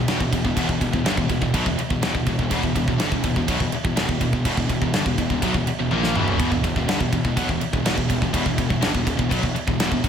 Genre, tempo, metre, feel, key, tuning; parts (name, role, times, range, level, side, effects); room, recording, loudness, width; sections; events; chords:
heavy metal; 124 BPM; 4/4; straight; E minor; A4 = 437 Hz
fuzz guitar; riff; 0.0-10.1 s; E2 to A#3; -29 LUFS; equal
heavy high-gain guitar; riff; 0.0-10.1 s; E2 to A#3; -26 LUFS; right 7 dB; distortion
high-gain distorted guitar; riff; 0.0-10.1 s; E2 to A#3; -26 LUFS; left 7 dB; distortion
fuzz picked electric bass; bass; 0.0-10.1 s; E1 to B1; -29 LUFS; equal; overdrive
modern studio drum kit; drums; 0.1-10.1 s; crash cymbal, kick drum, snare drum, toms; -24 LUFS; equal
moderate lush hall reverb, RT60 1.9 s, small room reverb; big arena sound; -19 LUFS; side -8 dB against mid
0.0-10.1 A section
drum fill 5.9-6.4
0.0 Em